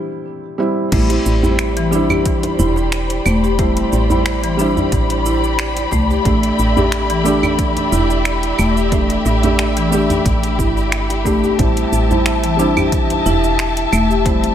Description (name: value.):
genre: organic downtempo.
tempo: 90 BPM.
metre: 4/4.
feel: swing 54% on 16ths.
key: A minor.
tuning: A4 = 440 Hz.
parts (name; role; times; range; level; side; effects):
felt-muted upright piano; accompaniment; 0.0-14.5 s; G3 to G4; -20 LUFS; right 3 dB; sidechain pumping, digital delay.
warm studio string section; sustained chords; 0.9-14.5 s; G4 to B5; -21 LUFS; left 2 dB; sidechain pumping.
marimba with soft mallets; arpeggios; 0.9-14.5 s; E3 to G4; -20 LUFS; left 2 dB; digital delay.
woody FM bass; bass; 0.9-14.5 s; E1 to C2; -20 LUFS; equal; sidechain pumping.
deep house drum kit; drums; 0.9-14.5 s; claves, crash cymbal, finger snaps, hi-hat, shaker; -24 LUFS; right 1 dB; overdrive, studio reverb.
electronic kick drum; drums; 0.9-14.4 s; none; -20 LUFS; equal; overdrive, studio reverb.
djembe; percussion; 1.1-14.5 s; none; -25 LUFS; right 1 dB; none.
room: light reverb, studio reverb.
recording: none.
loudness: -13 LUFS.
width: side -10 dB against mid.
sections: 0.9-14.5 A section.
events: break 0.0-0.9.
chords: 0.0 C; 0.9 Am11; 6.3 Em7; 11.6 C6.